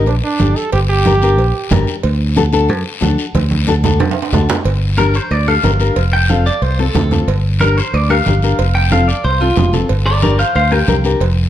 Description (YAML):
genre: latin, cumbia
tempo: 183 BPM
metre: 4/4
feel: straight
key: G minor from 4.7 s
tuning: A4 = 440 Hz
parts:
  - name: bright trombone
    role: second line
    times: 0.0-1.8 s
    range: D4 to A4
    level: -17 LUFS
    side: right 4 dB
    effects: none
  - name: nylon-string guitar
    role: accompaniment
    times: 0.0-11.2 s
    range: C4 to C5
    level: -18 LUFS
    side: left 5 dB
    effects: none
  - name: fingered electric bass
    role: bass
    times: 0.0-11.5 s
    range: F1 to F#2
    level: -14 LUFS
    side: equal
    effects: none
  - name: congas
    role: percussion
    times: 0.1-11.4 s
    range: none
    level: -19 LUFS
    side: right 3 dB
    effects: none
  - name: cowbell and timbales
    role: percussion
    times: 0.1-11.4 s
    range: none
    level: -24 LUFS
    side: right 7 dB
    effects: none
  - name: guiro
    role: percussion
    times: 0.1-11.5 s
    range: none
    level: -27 LUFS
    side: left 7 dB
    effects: none
  - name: clean electric guitar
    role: melody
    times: 5.0-11.0 s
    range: F4 to G5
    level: -17 LUFS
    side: equal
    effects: spring reverb, slapback echo
room: light reverb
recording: dark, warm production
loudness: -12 LUFS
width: side -11 dB against mid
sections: 0.0-4.7 A section; 4.7-11.5 B section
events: trombone solo 0.0-4.7; drum fill 3.3-4.7; clean electric guitar solo 4.7-11.5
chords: 0.0 Gm; 2.0 D; 4.7 Gm; 6.0 F; 7.3 Gm; 8.6 F; 9.9 Gm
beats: 0.07 0.40 | 0.73 1.05 1.38 1.71 | 2.04 2.36 2.69 3.02 | 3.35 3.67 4.00 4.33 | 4.66 4.98 5.31 5.64 | 5.97 6.29 6.62 6.95 | 7.28 7.60 7.93 8.26 | 8.59 8.91 9.24 9.57 | 9.90 10.23 10.55 10.88 | 11.21